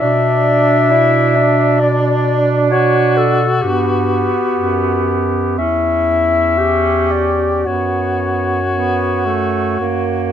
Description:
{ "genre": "classical, lyrical piece for single-reed quartet", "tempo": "55-68 BPM", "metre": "4/4", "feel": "rubato", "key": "B minor", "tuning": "A4 = 440 Hz", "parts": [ { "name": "mellow clarinet", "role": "melody", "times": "0.0-10.3 s", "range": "G4 to E5", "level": "-17 LUFS", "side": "left 6 dB", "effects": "none" }, { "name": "warm alto saxophone", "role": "second line", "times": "0.0-10.3 s", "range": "A3 to D4", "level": "-19 LUFS", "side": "right 10 dB", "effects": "none" }, { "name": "mellow tenor saxophone", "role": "accompaniment", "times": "0.0-10.3 s", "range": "D4 to G4", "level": "-18 LUFS", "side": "left 2 dB", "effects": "none" }, { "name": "mellow bass clarinet", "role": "bass", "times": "0.0-10.3 s", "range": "E2 to B2", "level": "-19 LUFS", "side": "right 2 dB", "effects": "none" } ], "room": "light reverb", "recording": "none", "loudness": "-12 LUFS", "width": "side -9 dB against mid", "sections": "0.0-10.3 A section", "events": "none", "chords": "0.0 Bm; 3.6 G; 5.6 C#dim/E; 7.7 F#sus4", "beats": "| 0.01 0.92 1.81 2.72 | 3.63 4.55 5.58 6.59 | 7.67 8.73 9.80" }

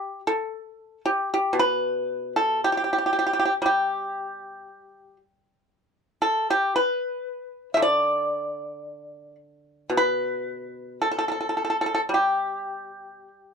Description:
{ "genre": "chinese traditional, Chinese solo plucked strings", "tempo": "57 BPM", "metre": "4/4", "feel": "rubato", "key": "G gong mode", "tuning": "A4 = 440 Hz", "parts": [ { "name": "pipa", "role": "solo", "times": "0.0-13.5 s", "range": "B2 to E5", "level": "-23 LUFS", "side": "equal", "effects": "none" } ], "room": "little or no reverb", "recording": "dry, close 1970s-style studio recording", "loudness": "-22 LUFS", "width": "side -6 dB against mid", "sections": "0.0-13.5 A section", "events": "none", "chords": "none", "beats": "0.48 | 1.55 2.60 3.65 4.68 | 5.71 6.75 7.79 8.84 | 9.91 11.00 12.11 13.28" }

